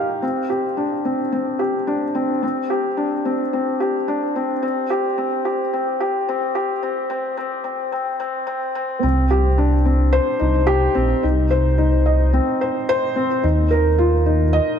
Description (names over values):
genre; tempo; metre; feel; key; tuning
piano and strings electronica; 109 BPM; 4/4; straight; unclear; A4 = 440 Hz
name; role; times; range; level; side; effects
felt-muted upright piano; riff; 0.0-14.8 s; C4 to F5; -19 LUFS; left 1 dB; digital delay
dark detuned saw bass; bass; 9.0-14.6 s; Bb1 to Eb2; -17 LUFS; equal; none
room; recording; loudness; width
moderate huge ambient reverb, RT60 4.4 s; high-pass filter; -17 LUFS; side -8 dB against mid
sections
0.0-9.0 A section; 9.0-14.8 B section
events
build-up 0.0-9.0; filter sweep 0.0-9.0; drop 9.0-14.8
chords
0.2 Csus2; 4.6 C5; 9.0 Cmadd9; 11.2 Cm; 13.4 Ebsus2